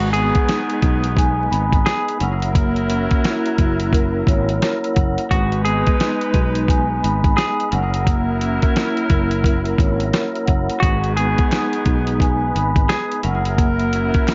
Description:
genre	hip hop, boom-bap hip-hop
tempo	87 BPM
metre	4/4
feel	swing 61% on 16ths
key	G# minor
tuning	A4 = 440 Hz
part	semi-hollow electric guitar	melody	0.0-13.2 s	F#4 to G#4	-26 LUFS	equal	spring reverb, high-pass filter, low-pass filter, analog delay
part	vibraphone with soft mallets	accompaniment	0.0-14.3 s	G#3 to B5	-24 LUFS	equal	high-pass filter, low-pass filter
part	percussive tonewheel organ	sustained chords	0.0-14.3 s	F#3 to B4	-32 LUFS	equal	chorus vibrato, lush chorus, high-pass filter, low-pass filter
part	edgy saxophone section	stabs	0.0-14.3 s	D#3 to B4	-29 LUFS	equal	high-pass filter, low-pass filter, analog delay
part	sustaining fretless electric bass	bass	0.0-14.1 s	F#1 to B1	-24 LUFS	equal	none
part	dusty soul sampler-style drum kit	drums	0.0-14.3 s	hi-hat, kick drum, snare drum	-21 LUFS	equal	none
part	finger snap	percussion	11.5-14.3 s	none	-35 LUFS	equal	none
room	light reverb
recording	vinyl crackle, nothing above 7.6 kHz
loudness	-18 LUFS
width	mono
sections	0.0-14.3 A section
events	none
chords	0.0 G#m; 2.2 F#7; 5.3 G#m; 7.7 F#7; 10.8 G#m; 13.2 F#7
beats	0.48 1.17 1.86 | 2.55 3.24 3.93 4.62 | 5.31 6.00 6.69 7.38 | 8.07 8.76 9.45 10.13 | 10.82 11.52 12.20 12.89 | 13.58 14.27

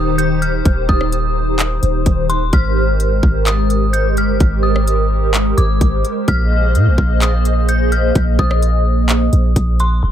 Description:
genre	hip hop, atmospheric cloud-rap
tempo	128 BPM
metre	4/4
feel	half-time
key	unclear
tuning	A4 = 440 Hz
part	dark detuned synth bell	melody	0.0-10.1 s	C6 to G6	-23 LUFS	left 1 dB	chorus, low-pass filter, analog delay
part	hollow soft pad	sustained chords	0.0-10.1 s	Eb3 to G5	-19 LUFS	equal	ensemble chorus, tremolo, sidechain pumping, low-pass filter
part	warm 808-style bass	bass	0.0-10.1 s	Eb1 to Bb2	-15 LUFS	equal	none
part	trap drum kit	drums	0.2-9.9 s	handclaps, hi-hat, kick drum, rim click	-17 LUFS	equal	none
room	little or no reverb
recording	echo-heavy mix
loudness	-13 LUFS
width	side -10 dB against mid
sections	0.0-10.0 A section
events	none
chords	0.0 Eb6; 2.5 Abmaj9; 6.3 Bb9sus4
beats	0.19 | 0.66 1.12 1.59 2.06 | 2.53 3.00 3.47 3.94 | 4.41 4.87 5.34 5.81 | 6.28 6.75 7.22 7.69 | 8.15 8.62 9.09 9.56 | 10.03

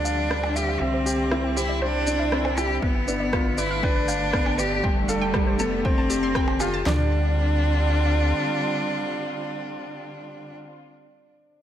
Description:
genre	piano and strings electronica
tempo	119 BPM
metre	4/4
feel	straight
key	D dorian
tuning	A4 = 445 Hz
part	rich cello	melody	0.0-10.6 s	G3 to G4	-26 LUFS	equal	none
part	muted studio string section	sustained chords	0.0-10.8 s	D3 to F4	-31 LUFS	equal	sidechain pumping, low-pass filter
part	warm upright piano	riff	0.0-11.6 s	B3 to G5	-30 LUFS	left 1 dB	ping-pong delay
part	round analog bass	bass	0.0-8.3 s	F1 to D2	-26 LUFS	equal	sidechain pumping
part	analog pluck	arpeggios	0.1-7.1 s	B4 to C6	-34 LUFS	right 2 dB	chorus, sidechain pumping, ping-pong delay
part	electronic shaker, rim click and percussion blips	drums	0.1-6.7 s	none	-30 LUFS	equal	none
part	deep house drum kit	drums	2.8-7.0 s	handclaps, kick drum, snare drum, toms	-26 LUFS	equal	overdrive
room	moderate lush hall reverb, RT60 1.6 s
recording	none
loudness	-21 LUFS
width	side -10 dB against mid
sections	0.0-6.9 A section; 6.9-10.9 B section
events	build-up 0.0-6.9; filter sweep on synth arpeggio sound 0.0-6.9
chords	0.0 Dmadd9; 0.8 Cadd9; 2.8 G7; 4.8 Fadd9; 6.9 Dm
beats	0.31 | 0.81 1.31 1.82 2.32 | 2.83 3.33 3.83 4.34 | 4.84 5.35 5.85 6.36 | 6.86 7.37 7.87 8.37 | 8.88 9.38 9.89 10.39

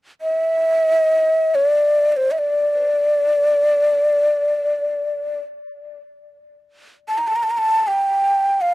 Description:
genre	arabic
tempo	free time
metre	none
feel	none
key	D maqam bayati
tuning	A4 = 440 Hz
part	breathy mellow ney	melody	0.2-8.7 s	C5 to Bb5	-16 LUFS	equal	tape echo
room	little or no reverb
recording	dry, close 1970s-style studio recording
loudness	-16 LUFS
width	side -18 dB against mid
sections	0.0-8.7 A section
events	none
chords	none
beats	free time

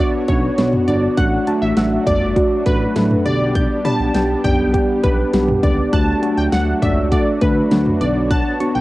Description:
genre	synth-pop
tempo	101 BPM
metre	4/4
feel	straight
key	D major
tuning	A4 = 440 Hz
part	funky polysynth comp	melody	0.0-8.8 s	B4 to A5	-23 LUFS	equal	chorus, cassette tape, analog delay
part	mellow tine electric piano	accompaniment	0.0-8.8 s	A3 to A4	-19 LUFS	equal	medium stereo tremolo, cassette tape
part	lush unison pad	sustained chords	0.0-8.8 s	F#3 to C#5	-25 LUFS	equal	chorus, cassette tape
part	soft round pluck	arpeggios	0.0-8.8 s	D3 to G6	-25 LUFS	right 2 dB	chorus, cassette tape, analog delay
part	smooth synth bass	bass	0.3-8.8 s	G1 to D2	-22 LUFS	equal	none
part	pop drum kit	drums	0.3-8.7 s	cowbell, hi-hat, kick drum, snare drum, toms	-20 LUFS	equal	cassette tape
room	light reverb, digital ambience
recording	home recording on cassette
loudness	-14 LUFS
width	side -18 dB against mid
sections	0.0-8.8 A section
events	none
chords	0.0 Bmadd9; 1.2 D; 3.3 G/B; 5.9 D; 8.0 Bmadd9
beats	0.58 | 1.18 1.77 2.37 2.96 | 3.55 4.15 4.74 5.33 | 5.93 6.52 7.12 7.71 | 8.31

